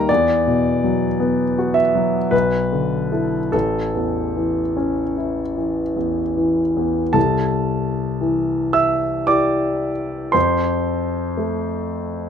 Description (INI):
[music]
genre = classical, impressionist solo piano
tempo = 48-60 BPM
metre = 3/4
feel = rubato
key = A major, C major from 7.2 s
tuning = A4 = 440 Hz
[part]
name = warm concert grand piano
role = solo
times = 0.0-12.3 s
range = A1 to E6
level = -17 LUFS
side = left 1 dB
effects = none
[sound]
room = moderate studio reverb, RT60 0.8 s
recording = close, detailed microphones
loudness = -17 LUFS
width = side -7 dB against mid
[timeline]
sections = 0.0-7.2 A section; 7.2-12.3 B section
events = none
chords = 0.1 Esus2; 2.3 Bm7; 3.5 A; 7.2 C69; 10.4 F